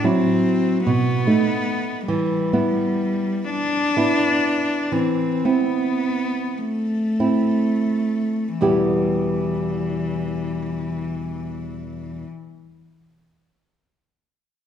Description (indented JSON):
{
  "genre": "romantic duo for cello and classical guitar",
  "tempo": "27-50 BPM (dotted quarters)",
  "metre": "6/8",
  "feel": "rubato",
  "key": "E minor",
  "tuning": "A4 = 439 Hz",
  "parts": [
    { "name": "warm cello", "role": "melody", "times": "0.0-12.2 s", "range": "E3 to D4", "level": "-23 LUFS", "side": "left 2 dB", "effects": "none" },
    { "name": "nylon-string guitar", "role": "accompaniment", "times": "0.0-12.2 s", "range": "E2 to G4", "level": "-22 LUFS", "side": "right 2 dB", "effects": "none" }
  ],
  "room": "wet recital hall reverb, RT60 1.4 s",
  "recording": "recorded in a church or concert hall",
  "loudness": "-19 LUFS",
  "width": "side -9 dB against mid",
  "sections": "0.0-8.6 A section; 8.6-12.4 B section",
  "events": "slowing down 0.9-8.6",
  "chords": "0.0 F#7(b5, no3); 0.9 B7; 2.1 Em; 4.9 Am/E; 8.6 Em",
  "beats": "0.86 | 2.08 3.49 | 4.92 6.56 | 8.61 10.52"
}